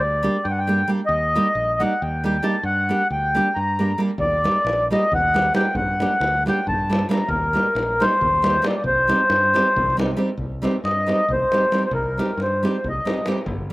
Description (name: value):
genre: balkan folk, Balkan wedding band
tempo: 272 BPM (eighths)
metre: 7/8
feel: straight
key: C dorian sharp4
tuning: A4 = 440 Hz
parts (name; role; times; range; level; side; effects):
- mellow accordion; melody; 0.0-13.3 s; Bb4 to Bb5; -20 LUFS; equal; slapback echo
- modern bright fingered electric bass; bass; 0.0-13.7 s; G1 to G2; -27 LUFS; equal; none
- nylon-string guitar; accompaniment; 0.2-13.7 s; G3 to G4; -24 LUFS; right 2 dB; none
- davul; percussion; 4.2-13.6 s; none; -29 LUFS; left 1 dB; slapback echo
room: little or no reverb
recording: recorded outdoors, with no room sound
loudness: -18 LUFS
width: side -20 dB against mid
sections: 0.0-10.4 A section; 10.4-13.7 B section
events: accordion solo 10.4-13.7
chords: 0.0 Gm; 1.1 Eb; 2.6 Gm; 4.2 Eb; 5.7 Gm; 7.3 Eb; 8.8 Cm